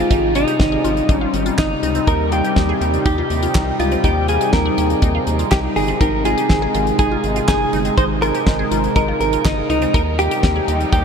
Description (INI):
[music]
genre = synth-pop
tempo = 122 BPM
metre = 4/4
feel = straight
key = Ab major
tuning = A4 = 439 Hz
[part]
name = direct-recorded clean electric guitar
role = melody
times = 0.0-11.0 s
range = Eb4 to C5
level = -19 LUFS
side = equal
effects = wide subtle chorus, diffuse ambient delay
[part]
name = chorused pulse-width pad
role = sustained chords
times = 0.0-11.0 s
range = C3 to Eb4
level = -22 LUFS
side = equal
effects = none
[part]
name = resonant blip pluck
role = arpeggios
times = 0.0-11.0 s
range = C4 to Ab4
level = -26 LUFS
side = equal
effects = phaser, diffuse ambient delay
[part]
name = rubbery square bass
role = bass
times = 0.0-11.0 s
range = G1 to Eb2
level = -22 LUFS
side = equal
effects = none
[part]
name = damped 70s drum kit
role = drums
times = 0.1-11.0 s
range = handclaps, hi-hat, kick drum, snare drum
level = -21 LUFS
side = equal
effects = none
[sound]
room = wet huge ambient reverb, RT60 8.4 s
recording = dreamy mix soaked in reverb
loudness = -15 LUFS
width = side -6 dB against mid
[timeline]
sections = 0.0-11.0 A section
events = none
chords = 0.0 Ab